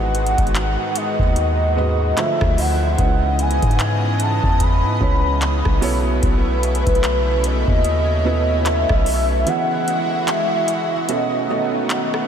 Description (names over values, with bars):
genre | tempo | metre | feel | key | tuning
contemporary R&B | 74 BPM | 4/4 | swing 58% on 16ths | unclear | A4 = 443 Hz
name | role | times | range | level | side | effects
warm velvety synth lead | melody | 0.0-12.3 s | B4 to B5 | -22 LUFS | equal | chorus, tape echo
felt-muted upright piano | accompaniment | 0.0-12.3 s | G#2 to E5 | -25 LUFS | right 4 dB | none
lush unison pad | sustained chords | 0.0-12.3 s | C#3 to D#5 | -25 LUFS | equal | chorus
long sustained 808-style bass | bass | 0.0-9.4 s | G#1 to G#2 | -20 LUFS | equal | none
booming analog drum machine | drums | 0.1-12.3 s | handclaps, hi-hat, kick drum, rim click | -23 LUFS | equal | none
room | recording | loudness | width
moderate huge ambient reverb, RT60 8.5 s | dreamy mix soaked in reverb | -16 LUFS | side -8 dB against mid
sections
0.0-12.3 A section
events
break 9.5-12.3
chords
0.0 G#m7; 2.2 Dm9; 3.0 C#m9; 5.8 B9sus4; 9.5 Eadd9; 11.1 B7